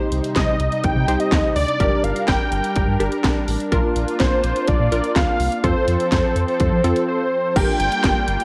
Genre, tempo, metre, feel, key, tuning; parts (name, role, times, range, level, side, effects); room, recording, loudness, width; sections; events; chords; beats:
synth-pop; 125 BPM; 4/4; straight; G minor; A4 = 440 Hz
funky polysynth comp; accompaniment; 0.0-8.2 s; C4 to C5; -27 LUFS; equal; chorus
warm analog pad; sustained chords; 0.0-8.4 s; C3 to Bb4; -28 LUFS; equal; chorus
round analog bass; bass; 0.1-8.4 s; G1 to F3; -25 LUFS; equal
house drum kit; drums; 0.1-8.4 s; crash cymbal, handclaps, hi-hat, kick drum, snare drum; -24 LUFS; equal; overdrive
unison lead; melody; 0.4-8.4 s; C5 to G5; -24 LUFS; equal
light reverb; worn, warbling old tape, cassette tape, warbly pitch drift; -19 LUFS; mono
0.0-7.6 A section
break 7.1-7.6
0.0 Cm; 1.8 Gm; 3.7 Bb; 5.6 F; 7.6 Gm7
0.36 0.84 1.32 | 1.80 2.28 2.76 3.24 | 3.72 4.20 4.68 5.16 | 5.64 6.12 6.60 7.08 | 7.56 8.04